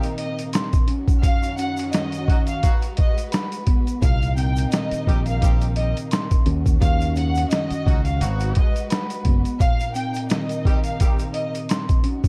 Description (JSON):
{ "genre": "hip hop, boom-bap hip-hop", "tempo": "86 BPM", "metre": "4/4", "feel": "swing 56% on 16ths", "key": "unclear", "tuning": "A4 = 441 Hz", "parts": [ { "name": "mellow tine electric piano", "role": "accompaniment", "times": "0.0-12.3 s", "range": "Gb2 to C6", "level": "-30 LUFS", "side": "equal", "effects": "high-pass filter, low-pass filter" }, { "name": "warm studio string section", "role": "sustained chords", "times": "0.0-12.3 s", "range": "C3 to Cb5", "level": "-37 LUFS", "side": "equal", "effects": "high-pass filter, low-pass filter" }, { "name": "warm horn section", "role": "stabs", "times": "0.0-11.2 s", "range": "Gb3 to G4", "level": "-38 LUFS", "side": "equal", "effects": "high-pass filter, low-pass filter, tape echo" }, { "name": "boom bap sampler-style drum kit", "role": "drums", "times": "0.0-12.3 s", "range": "hi-hat, kick drum, rim click, snare drum", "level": "-22 LUFS", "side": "equal", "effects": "none" }, { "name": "tube shaker", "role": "percussion", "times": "0.0-12.3 s", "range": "none", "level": "-46 LUFS", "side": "equal", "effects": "none" }, { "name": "warm symphonic violin section", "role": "melody", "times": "0.2-11.5 s", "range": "Eb5 to G5", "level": "-31 LUFS", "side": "equal", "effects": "high-pass filter, low-pass filter" }, { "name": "fingered electric bass", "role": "bass", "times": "4.0-9.4 s", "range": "Gb1 to Eb2", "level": "-24 LUFS", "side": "equal", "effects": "none" } ], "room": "small room ambience", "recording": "dark, warm production", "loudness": "-21 LUFS", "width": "mono", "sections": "0.0-12.3 A section", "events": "break 0.0-4.0", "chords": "0.0 Cm7; 0.9 Ebm7; 2.6 Abm7; 4.0 Cm7; 6.5 Ebm7; 8.2 Abm7; 9.6 Cm7" }